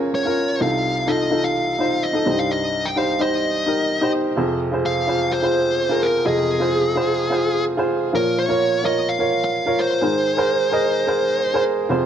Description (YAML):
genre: pop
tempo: 128 BPM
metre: 4/4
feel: straight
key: F minor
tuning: A4 = 440 Hz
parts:
  - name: warm upright piano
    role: accompaniment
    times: 0.0-12.1 s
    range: C2 to Eb5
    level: -19 LUFS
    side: right 1 dB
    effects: plate reverb
  - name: fuzz lead guitar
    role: melody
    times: 0.1-11.6 s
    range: Ab4 to G5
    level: -22 LUFS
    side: left 1 dB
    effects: distortion, plate reverb
room: moderate studio reverb, RT60 0.5 s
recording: none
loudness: -17 LUFS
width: side -9 dB against mid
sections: 0.0-4.4 A section; 4.4-12.1 B section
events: none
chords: 0.0 Bbm/Db; 0.6 F7/C; 2.3 Cm; 4.4 Fm; 8.1 Bbm; 10.0 Abadd9